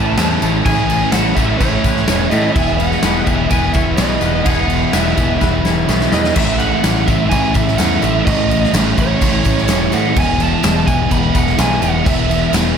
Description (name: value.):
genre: rock, shoegaze and dream pop.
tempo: 126 BPM.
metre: 4/4.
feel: straight.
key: unclear.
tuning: A4 = 437 Hz.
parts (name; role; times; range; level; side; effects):
lead guitar through a small cranked amp; melody; 0.0-12.5 s; C#5 to B5; -20 LUFS; right 3 dB; overdrive, slapback echo.
twangy electric guitar; arpeggios; 0.0-6.4 s; G#4 to C#5; -27 LUFS; left 12 dB; wide subtle chorus, slapback echo.
biting overdriven guitar; riff; 0.0-12.8 s; A2 to E4; -20 LUFS; right 11 dB; reverse reverb.
raw garage guitar; riff; 0.0-6.3 s; A2 to E4; -23 LUFS; left 1 dB; overdrive.
thick fuzz guitar; riff; 0.0-12.8 s; E2 to A3; -20 LUFS; left 12 dB; distortion, wide subtle chorus.
growling picked electric bass; bass; 0.0-12.7 s; E1 to A2; -20 LUFS; equal; overdrive.
huge arena drum kit; drums; 0.2-12.7 s; crash cymbal, kick drum, snare drum; -17 LUFS; equal; none.
tambourine; percussion; 0.2-12.6 s; none; -32 LUFS; left 16 dB; none.
room: light reverb, small room ambience.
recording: none.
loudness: -12 LUFS.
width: side -7 dB against mid.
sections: 0.0-6.4 A section; 6.4-12.8 A section.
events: drum fill 5.4-6.4.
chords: 0.0 Amaj7; 2.6 E; 6.4 A; 10.2 E.